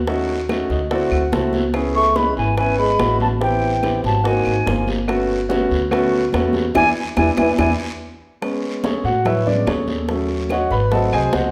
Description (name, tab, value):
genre	Afro-Cuban jazz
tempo	144 BPM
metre	4/4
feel	straight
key	A major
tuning	A4 = 440 Hz
part	upright bass	bass	0.0-11.5 s	G1 to A2	-26 LUFS	equal	none
part	warm baby grand piano	accompaniment	0.1-11.5 s	F#3 to B5	-22 LUFS	equal	none
part	bongos	percussion	0.1-11.5 s	none	-31 LUFS	equal	none
part	congas	percussion	0.1-11.5 s	none	-29 LUFS	equal	none
part	guiro	percussion	0.1-11.5 s	none	-39 LUFS	equal	none
part	claves	percussion	0.5-11.3 s	none	-38 LUFS	equal	none
part	silver concert flute	melody	2.0-7.7 s	G5 to C#6	-22 LUFS	equal	none
part	trombone with bucket mute	second line	2.0-7.7 s	D#3 to A3	-26 LUFS	equal	none
room	moderate recital hall reverb, RT60 1.2 s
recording	recorded in a church or concert hall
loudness	-19 LUFS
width	mono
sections	0.0-8.4 A section; 8.4-11.5 B section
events	grand piano fill 0.5-1.7; band accent 6.8-8.4; drum fill 7.8-8.4; grand piano solo 8.4-11.5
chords	0.1 D#m7b5; 0.9 D9; 1.7 C#m7; 3.4 Am9; 4.2 G#9; 5.1 Gmaj9#11; 6.8 E7; 8.4 Amaj9; 10.1 D#m7b5; 10.9 G#7b9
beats	| 0.08 0.49 0.91 1.33 | 1.75 2.16 2.58 3.00 | 3.42 3.83 4.25 4.67 | 5.08 5.50 5.92 6.33 | 6.75 7.17 7.58 8.00 | 8.42 8.84 9.25 9.67 | 10.08 10.50 10.92 11.33